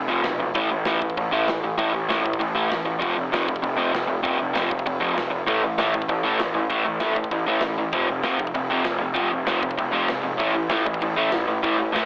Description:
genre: punk rock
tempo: 195 BPM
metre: 4/4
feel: straight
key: unclear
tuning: A4 = 440 Hz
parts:
  - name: crunchy overdriven guitar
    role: riff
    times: 0.0-12.1 s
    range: F2 to A3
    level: -26 LUFS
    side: equal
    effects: none
  - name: fuzz picked electric bass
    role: bass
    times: 0.0-12.1 s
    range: F1 to B1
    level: -30 LUFS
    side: equal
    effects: overdrive
  - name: tight metal drum kit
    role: drums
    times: 0.2-12.0 s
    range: hi-hat, kick drum, snare drum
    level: -34 LUFS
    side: equal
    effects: none
  - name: distorted electric guitar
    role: riff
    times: 5.5-12.1 s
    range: F2 to A3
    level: -30 LUFS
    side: equal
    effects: distortion
room: light reverb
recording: heavily compressed radio sound, telephone sound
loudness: -23 LUFS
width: mono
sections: 0.0-12.1 A section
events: none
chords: 0.0 F5; 0.6 A5; 3.0 F5; 5.5 A5; 7.9 F5; 10.4 A5

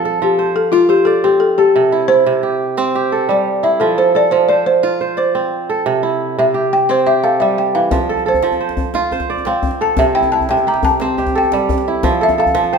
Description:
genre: west african traditional, West African string and xylophone music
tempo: 117 BPM (dotted quarters)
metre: 12/8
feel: straight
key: F major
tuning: A4 = 440 Hz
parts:
  - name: kora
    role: arpeggios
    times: 0.0-12.8 s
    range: C3 to D5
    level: -17 LUFS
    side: right 4 dB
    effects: none
  - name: balafon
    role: melody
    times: 0.2-12.8 s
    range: F4 to Bb5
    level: -14 LUFS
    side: left 1 dB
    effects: none
  - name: djembe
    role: percussion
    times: 7.9-12.7 s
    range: none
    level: -22 LUFS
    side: left 3 dB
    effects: none
room: moderate recital hall reverb, RT60 1.4 s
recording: minimal, uncompressed stereo recording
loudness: -12 LUFS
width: side -5 dB against mid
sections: 0.0-12.8 A section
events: balafon solo 0.0-12.8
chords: 0.0 F; 1.8 C; 3.8 F; 5.9 C; 7.9 F; 10.0 C; 12.0 F

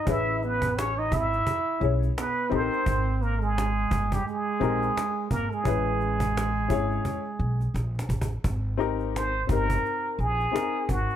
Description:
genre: hip hop, jazz-hop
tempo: 86 BPM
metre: 4/4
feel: swing 58% on 16ths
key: Ab major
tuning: A4 = 439 Hz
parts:
  - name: trumpet with plunger mute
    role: melody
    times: 0.0-11.2 s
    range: Gb4 to E5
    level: -28 LUFS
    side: equal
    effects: slapback echo
  - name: trombone with metal mute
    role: second line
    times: 0.0-7.8 s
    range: G3 to E4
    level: -32 LUFS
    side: right 10 dB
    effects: none
  - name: warm upright piano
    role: accompaniment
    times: 0.1-11.2 s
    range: C4 to C#5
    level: -30 LUFS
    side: left 10 dB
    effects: none
  - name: upright bass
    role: bass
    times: 0.1-11.0 s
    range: G1 to B1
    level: -28 LUFS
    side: equal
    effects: none
  - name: cajon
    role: drums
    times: 0.1-11.2 s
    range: none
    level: -32 LUFS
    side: right 1 dB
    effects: none
room: light reverb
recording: dark, warm production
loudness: -24 LUFS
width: side -10 dB against mid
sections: 0.0-8.4 A section; 8.4-11.2 B section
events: drum fill 7.7-8.4; muted trumpet solo 8.4-11.2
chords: 0.1 Amaj9; 2.9 Abmaj9; 5.7 Amaj9; 8.4 Abmaj9

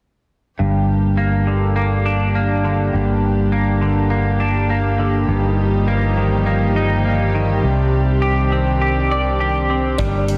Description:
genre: post-rock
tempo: 102 BPM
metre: 4/4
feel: straight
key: G minor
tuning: A4 = 440 Hz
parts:
  - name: dark studio string section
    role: sustained chords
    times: 0.6-10.4 s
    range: Eb3 to G4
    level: -24 LUFS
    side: equal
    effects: none
  - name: semi-hollow electric guitar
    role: arpeggios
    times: 0.6-10.4 s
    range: G2 to D5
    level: -23 LUFS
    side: equal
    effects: analog chorus, analog delay
  - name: fingered electric bass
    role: bass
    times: 0.6-10.4 s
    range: G1 to C2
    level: -21 LUFS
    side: equal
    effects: none
  - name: felt-muted upright piano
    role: arpeggios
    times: 10.0-10.4 s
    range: D5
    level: -30 LUFS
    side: equal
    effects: none
  - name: big rock drum kit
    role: drums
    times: 10.0-10.4 s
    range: hi-hat, kick drum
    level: -26 LUFS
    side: equal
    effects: none
room: moderate lush hall reverb, RT60 2.4 s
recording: dreamy mix soaked in reverb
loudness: -18 LUFS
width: mono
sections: 0.6-10.4 A section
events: none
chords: 0.6 Gm; 5.3 Ebadd9/G; 7.6 Cmadd9

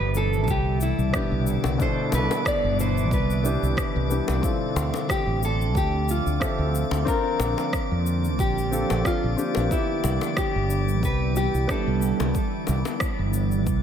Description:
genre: sunset chillout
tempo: 91 BPM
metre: 4/4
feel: swing 55% on 16ths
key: C major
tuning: A4 = 436 Hz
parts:
  - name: nylon-string guitar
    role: melody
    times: 0.0-12.3 s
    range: E4 to D5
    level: -29 LUFS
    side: equal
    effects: tape echo
  - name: dark baby grand piano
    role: accompaniment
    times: 0.0-12.4 s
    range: B2 to E5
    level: -30 LUFS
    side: moving between left 4 dB and right 5 dB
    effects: auto-pan, tape echo
  - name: ethereal airy pad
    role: sustained chords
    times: 0.0-13.8 s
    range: B2 to E5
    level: -30 LUFS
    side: equal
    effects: ensemble chorus, built-in reverb
  - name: fretless electric bass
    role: bass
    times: 0.0-13.8 s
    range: G1 to F2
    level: -24 LUFS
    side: equal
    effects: wide subtle chorus
  - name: drifting glass-harmonics texture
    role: texture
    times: 0.1-13.8 s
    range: D5 to D6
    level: -37 LUFS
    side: left 1 dB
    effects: chorus, built-in reverb
  - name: electronic cabasa and rim click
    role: drums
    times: 0.1-13.8 s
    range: none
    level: -33 LUFS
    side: equal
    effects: none
  - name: electronic kick drum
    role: drums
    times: 0.5-13.8 s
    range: none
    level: -28 LUFS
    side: equal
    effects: overdrive
  - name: bongos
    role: percussion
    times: 1.6-13.0 s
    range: none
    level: -34 LUFS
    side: left 4 dB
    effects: none
room: moderate plate reverb, RT60 1.8 s, small room ambience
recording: dreamy mix soaked in reverb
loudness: -21 LUFS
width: side -8 dB against mid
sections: 0.0-13.8 A section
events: filter sweep on grand piano 0.0-12.3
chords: 0.0 Cmaj7; 4.4 Dm9; 7.1 Bbmaj9; 9.7 Cmaj7

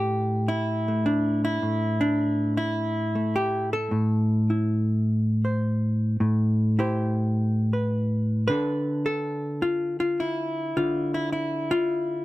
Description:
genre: solo jazz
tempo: 105 BPM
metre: 4/4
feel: swing 67% on 8ths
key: A minor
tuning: A4 = 436 Hz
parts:
  - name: hollow-body jazz guitar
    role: solo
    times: 0.0-12.2 s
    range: A2 to C5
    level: -23 LUFS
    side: equal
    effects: none
room: light reverb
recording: close, detailed microphones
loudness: -23 LUFS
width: side -16 dB against mid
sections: 0.0-12.2 A section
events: none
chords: 0.0 Am7; 8.5 Dm

